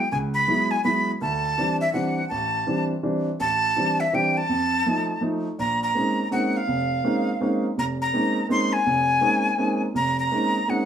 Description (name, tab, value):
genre	jazz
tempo	164 BPM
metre	3/4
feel	swing 64% on 8ths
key	Bb minor from 5.6 s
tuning	A4 = 441 Hz
part	breathy bright jazz flute	melody	0.0-10.9 s	E5 to C6	-23 LUFS	left 1 dB	none
part	warm grand piano	accompaniment	0.1-10.9 s	F1 to E4	-24 LUFS	right 1 dB	none
room	light reverb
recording	small room ambience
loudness	-21 LUFS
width	side -8 dB against mid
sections	0.0-5.6 A section; 5.6-10.9 B section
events	none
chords	0.0 F#9sus4; 1.2 D9sus4; 4.5 F7; 5.6 Bbm11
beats	| 0.10 0.47 0.83 | 1.20 1.56 1.93 | 2.29 2.66 3.02 | 3.39 3.75 4.12 | 4.48 4.85 5.21 | 5.58 5.94 6.31 | 6.67 7.04 7.40 | 7.76 8.13 8.49 | 8.86 9.22 9.59 | 9.95 10.31 10.68